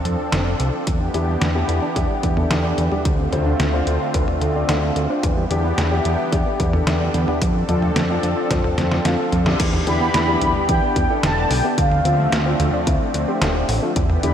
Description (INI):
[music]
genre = synthwave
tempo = 110 BPM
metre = 4/4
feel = straight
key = E phrygian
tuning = A4 = 441 Hz
[part]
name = lush unison pad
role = sustained chords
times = 0.0-14.3 s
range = D3 to A4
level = -24 LUFS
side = equal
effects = chorus, sidechain pumping
[part]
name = fat analog bass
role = bass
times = 0.1-14.3 s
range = D1 to F2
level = -21 LUFS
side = equal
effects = tube saturation
[part]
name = detuned 8-bit digital drum machine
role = drums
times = 0.1-14.3 s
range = crash cymbal, hi-hat, snare drum, toms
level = -24 LUFS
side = equal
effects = none
[part]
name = analog pluck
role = arpeggios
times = 0.9-14.3 s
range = D3 to D4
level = -29 LUFS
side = right 2 dB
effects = none
[part]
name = electronic kick drum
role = drums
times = 0.9-14.1 s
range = none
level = -22 LUFS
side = equal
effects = none
[part]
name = dark grand piano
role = stabs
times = 1.1-14.3 s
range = C4 to F5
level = -25 LUFS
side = left 4 dB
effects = diffuse ambient delay
[part]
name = mellow synth brass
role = melody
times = 9.9-14.3 s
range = F5 to B5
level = -22 LUFS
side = right 1 dB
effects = chorus, tape echo
[sound]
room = moderate lush hall reverb, RT60 2.8 s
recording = dreamy mix soaked in reverb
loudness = -17 LUFS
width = side -9 dB against mid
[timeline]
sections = 0.0-9.6 A section; 9.6-14.3 B section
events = drum fill 8.5-9.6; band accent 9.5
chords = 0.0 F6; 0.9 Em7; 3.1 Dm7; 5.2 Em7; 7.4 F6; 9.6 Em7; 11.8 Dm7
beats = 0.33 | 0.87 1.42 1.96 2.51 | 3.05 3.60 4.14 4.69 | 5.23 5.78 6.33 6.87 | 7.42 7.96 8.51 9.05 | 9.60 10.14 10.69 11.23 | 11.78 12.32 12.87 13.42 | 13.96